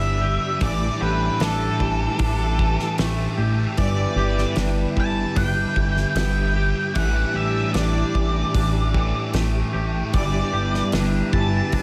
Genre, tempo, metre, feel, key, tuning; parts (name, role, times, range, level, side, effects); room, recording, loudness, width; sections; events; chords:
rock, shoegaze and dream pop; 76 BPM; 4/4; straight; G major; A4 = 440 Hz
octave-fuzz lead guitar; melody; 0.0-11.8 s; A4 to A5; -29 LUFS; equal; distortion, slapback echo
string machine, violins; sustained chords; 0.0-11.8 s; G4 to D6; -36 LUFS; equal; ensemble chorus
twangy electric guitar; arpeggios; 0.0-11.8 s; E3 to G4; -35 LUFS; equal; lush chorus, slapback echo
direct-recorded clean electric guitar; riff; 0.0-11.8 s; A2 to D5; -31 LUFS; equal; reverse reverb
thick fuzz guitar; riff; 0.0-11.8 s; G2 to A3; -29 LUFS; equal; distortion, ensemble chorus
chorused synth bass; bass; 0.0-11.8 s; G1 to A1; -26 LUFS; equal
loose indie drum kit; drums; 0.6-11.8 s; hi-hat, kick drum, snare drum; -28 LUFS; equal
light reverb, studio ambience; -22 LUFS; mono
0.0-11.8 A section
0.0 G6; 0.6 A7sus4; 3.8 G6; 7.0 A7sus4; 10.1 G6